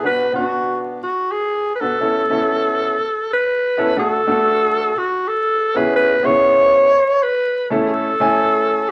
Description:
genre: soul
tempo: 122 BPM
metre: 4/4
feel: swing 61% on 8ths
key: A major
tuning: A4 = 440 Hz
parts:
  - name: clear grand piano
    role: accompaniment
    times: 0.0-8.8 s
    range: A3 to G#5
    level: -22 LUFS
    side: equal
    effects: none
  - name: breathy alto saxophone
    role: melody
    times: 0.1-8.9 s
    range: F#4 to C#5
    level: -18 LUFS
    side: equal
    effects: none
room: wet small room reverb, RT60 0.5 s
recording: vinyl crackle, lossy compression artefacts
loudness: -17 LUFS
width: mono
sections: 0.0-4.0 A section; 4.0-8.9 B section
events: none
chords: 0.0 Bm; 2.0 Aadd9; 4.0 D; 5.7 E6; 7.7 A

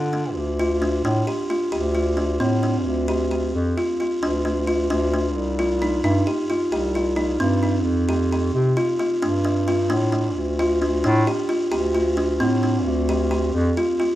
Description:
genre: contemporary instrumental, chamber music in an uneven meter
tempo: 264 BPM (eighths)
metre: 11/8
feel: straight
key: unclear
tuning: A4 = 438 Hz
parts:
  - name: buzzing kalimba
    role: arpeggios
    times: 0.0-14.1 s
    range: C4 to G4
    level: -21 LUFS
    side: equal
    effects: none
  - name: mellow bass clarinet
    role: bass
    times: 0.0-13.8 s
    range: C2 to D3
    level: -22 LUFS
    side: equal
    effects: none
room: light reverb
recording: dark, warm production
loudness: -19 LUFS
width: side -14 dB against mid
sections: 0.0-14.2 A section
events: none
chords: 0.4 Dm; 2.9 Dmadd11; 5.4 Cm; 7.9 Fsus2; 9.2 Gsus2; 10.4 Dm; 12.9 Dmadd11

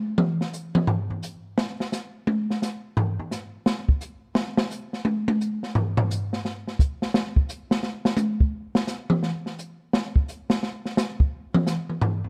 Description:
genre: jazz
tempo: 172 BPM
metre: 4/4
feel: swing 65% on 8ths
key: none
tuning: none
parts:
  - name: open jazz drum kit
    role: drums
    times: 0.2-12.3 s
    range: hi-hat, kick drum, snare drum, toms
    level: -25 LUFS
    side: equal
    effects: none
room: light reverb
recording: close, detailed microphones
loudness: -26 LUFS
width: mono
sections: 0.0-7.1 A section; 7.1-12.3 A section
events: drum solo 0.0-7.1, 7.1-12.3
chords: none

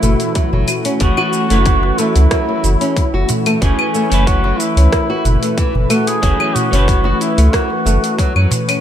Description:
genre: organic downtempo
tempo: 92 BPM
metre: 4/4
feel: straight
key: F# minor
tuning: A4 = 441 Hz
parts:
  - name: warm duduk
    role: melody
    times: 0.0-8.5 s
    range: C#4 to G#4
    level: -20 LUFS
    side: equal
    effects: ping-pong delay, slapback echo
  - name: clean electric guitar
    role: accompaniment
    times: 0.0-8.8 s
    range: A3 to B4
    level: -24 LUFS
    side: right 1 dB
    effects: analog chorus, sidechain pumping, digital delay, slapback echo
  - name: warm analog pad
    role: sustained chords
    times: 0.0-8.8 s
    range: E3 to B4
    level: -22 LUFS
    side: left 1 dB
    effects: chorus, sidechain pumping
  - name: nylon-string guitar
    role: arpeggios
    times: 0.0-8.8 s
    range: E3 to F#4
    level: -21 LUFS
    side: left 1 dB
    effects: digital delay, slapback echo
  - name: warm sub bass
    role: bass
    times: 0.0-8.5 s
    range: F#1 to F#2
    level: -13 LUFS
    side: equal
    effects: sidechain pumping
  - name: deep house drum kit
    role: drums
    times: 0.0-8.8 s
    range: claves, hi-hat, rim click, shaker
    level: -21 LUFS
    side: equal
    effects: overdrive
  - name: darbuka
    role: percussion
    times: 0.0-8.8 s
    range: none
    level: -23 LUFS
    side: right 1 dB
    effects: none
  - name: electronic kick drum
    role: drums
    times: 0.4-8.3 s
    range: none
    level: -16 LUFS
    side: equal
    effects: none
room: light reverb, digital ambience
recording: none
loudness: -12 LUFS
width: side -10 dB against mid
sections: 0.0-8.8 A section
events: none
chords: 0.0 F#m7

